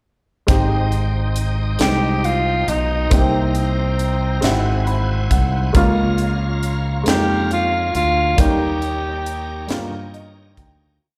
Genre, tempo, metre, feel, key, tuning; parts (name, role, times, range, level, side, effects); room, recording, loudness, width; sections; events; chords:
slow gospel; 46 BPM (dotted quarters); 6/8; straight; Ab major; A4 = 440 Hz
warm baby grand piano; accompaniment; 0.5-11.0 s; Ab2 to Cb6; -25 LUFS; equal
bright tonewheel organ; sustained chords; 0.5-11.0 s; Eb4 to Bb5; -32 LUFS; equal; slow rotary speaker, overdrive, chorus vibrato
modern bright fingered electric bass; bass; 0.5-11.0 s; Ab1 to G2; -23 LUFS; equal
crisp fusion drum kit; drums; 0.5-10.8 s; hi-hat, kick drum, snare drum; -22 LUFS; equal
breathy tenor saxophone; melody; 1.8-10.6 s; C4 to G4; -24 LUFS; equal
wet recital hall reverb, RT60 1.4 s; recorded in a church or concert hall; -19 LUFS; mono
0.5-11.0 verse
grand piano fill 4.4-5.7, 9.7-11.0; fade-out 8.4-11.0
0.5 Abmaj7; 3.1 Cm7; 4.4 Abaug7; 5.7 Db6; 8.4 Eb7